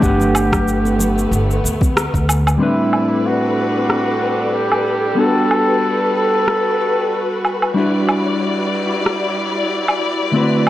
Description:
sunset chillout; 93 BPM; 4/4; swing 55% on 16ths; A dorian; A4 = 440 Hz
warm flugelhorn; melody; 0.0-7.4 s; E4 to A4; -20 LUFS; right 1 dB; tape echo
mellow electric guitar; accompaniment; 0.0-10.7 s; A2 to F#5; -19 LUFS; equal; auto-pan
warm studio string section; sustained chords; 0.0-10.7 s; F#3 to D5; -20 LUFS; left 1 dB
upright bass; bass; 0.0-2.6 s; G1 to D2; -19 LUFS; equal; transformer saturation
electronic cabasa, woodblock and rim click; drums; 0.0-10.7 s; -19 LUFS; right 1 dB; low-pass filter on perc, low-pass filter on snare
electronic kick drum; drums; 0.0-2.3 s; -17 LUFS; equal; overdrive
congas; percussion; 0.0-1.9 s; -27 LUFS; left 2 dB
wind-like tuned noise texture; texture; 4.0-10.7 s; B4 to B5; -30 LUFS; left 2 dB; built-in reverb
light reverb, studio reverb; dry, gritty hardware recording; -14 LUFS; side -14 dB against mid
0.0-2.6 A section; 2.6-10.7 B section
filter sweep on clean electric guitar 0.0-2.6; band accent 2.0-2.3
0.0 Gmaj9; 2.6 Am11; 5.2 Gmaj9; 7.8 Em9
| 0.03 0.67 1.31 1.96 | 2.60 3.25 3.90 4.54 | 5.19 5.83 6.48 7.12 | 7.77 8.41 9.06 9.70 | 10.35

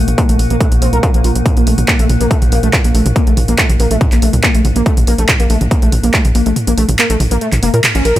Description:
driving peak-time techno; 141 BPM; 4/4; straight; A4 = 440 Hz
overdriven synth lead; riff; 0.0-8.1 s; A3 to Bb4; -18 LUFS; equal; distortion, analog chorus, cassette tape, sidechain pumping, ping-pong delay
tight sequencer bass; bass; 0.0-8.2 s; F1 to Bb2; -14 LUFS; equal; sidechain pumping
metallic inharmonic drone; drone; 0.0-8.2 s; Bb2 to Bb3; -22 LUFS; left 1 dB; chorus, built-in reverb, sidechain pumping
punchy analog drum machine; drums; 0.1-8.2 s; handclaps, hi-hat, toms; -17 LUFS; right 1 dB; overdrive
electronic kick drum; drums; 0.2-6.2 s; -13 LUFS; equal; distortion, overdrive
digital ambience; -10 LUFS; side -14 dB against mid
0.0-8.2 A section
kick drops out 6.6-8.2; band accent 7.8
0.18 0.60 1.03 | 1.46 1.88 2.31 2.73 | 3.16 3.58 4.01 4.43 | 4.86 5.29 5.71 6.14 | 6.56 6.99 7.41 7.84

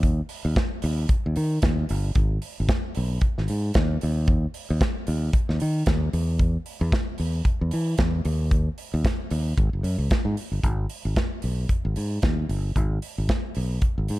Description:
disco; 113 BPM; 4/4; swing 56% on 16ths; G# minor; A4 = 438 Hz
fingered electric bass; bass; 0.0-14.2 s; F#1 to E3; -24 LUFS; equal
modern studio drum kit; drums; 0.0-14.2 s; hi-hat, kick drum, snare drum; -25 LUFS; equal
little or no reverb; -22 LUFS; side -18 dB against mid
0.0-10.6 A section; 10.6-14.2 B section
| 0.03 0.56 1.09 1.62 | 2.15 2.68 3.21 3.74 | 4.27 4.80 5.33 5.86 | 6.39 6.92 7.45 7.98 | 8.51 9.04 9.57 10.10 | 10.63 11.16 11.70 12.23 | 12.76 13.29 13.82

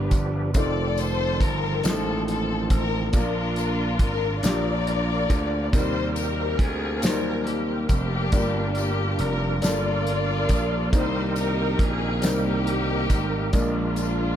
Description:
slow gospel; 46 BPM (dotted quarters); 6/8; straight; Eb major; A4 = 437 Hz
warm studio string section; melody; 0.0-14.4 s; Ab3 to D5; -28 LUFS; left 4 dB; dub echo
warm upright piano; accompaniment; 0.0-14.4 s; G2 to C5; -30 LUFS; left 1 dB; dub echo
bright tonewheel organ; sustained chords; 0.0-14.4 s; Eb3 to Bb4; -31 LUFS; right 4 dB; fast rotary speaker, overdrive, chorus vibrato
gritty slap bass; bass; 0.0-14.4 s; F1 to Eb2; -26 LUFS; equal; overdrive
warm soul drum kit; drums; 0.1-14.2 s; hi-hat, kick drum, snare drum; -24 LUFS; equal
tambourine; percussion; 0.1-14.4 s; -39 LUFS; left 8 dB; dub echo
little or no reverb; echo-heavy mix; -21 LUFS; side -10 dB against mid
0.0-14.4 A section
0.0 G7; 0.5 F7; 3.1 Bb; 5.7 Eb6; 8.3 Gm7; 10.9 Cm7; 13.5 Bb7
| 0.55 1.84 | 3.14 4.44 | 5.73 7.03 | 8.33 9.63 | 10.93 12.23 | 13.54

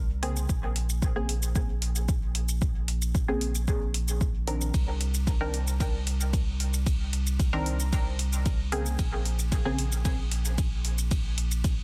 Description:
dub techno; 113 BPM; 4/4; straight; A4 = 440 Hz
soft dub sub bass; bass; 0.0-11.8 s; Bb1 to C2; -31 LUFS; equal; tube saturation, sidechain pumping
filtered dub chord stab; stabs; 0.2-9.8 s; Db3 to Bb4; -37 LUFS; equal; chorus, phaser, cassette tape, sidechain pumping, dub echo
deep house drum kit; drums; 0.2-11.8 s; hi-hat, ride cymbal, shaker; -38 LUFS; equal; small room ambience
electronic kick drum; drums; 0.5-11.8 s; -30 LUFS; equal; small room ambience
digital ambience; dense, heavily limited modern master; -28 LUFS; mono
0.0-11.8 A section
0.5 Bbm9; 4.7 Cm9; 9.0 Bbm9
| 0.49 1.02 1.55 2.08 | 2.62 3.15 3.68 4.21 | 4.74 5.27 5.80 6.33 | 6.86 7.39 7.93 8.46 | 8.99 9.52 10.05 10.58 | 11.11 11.64

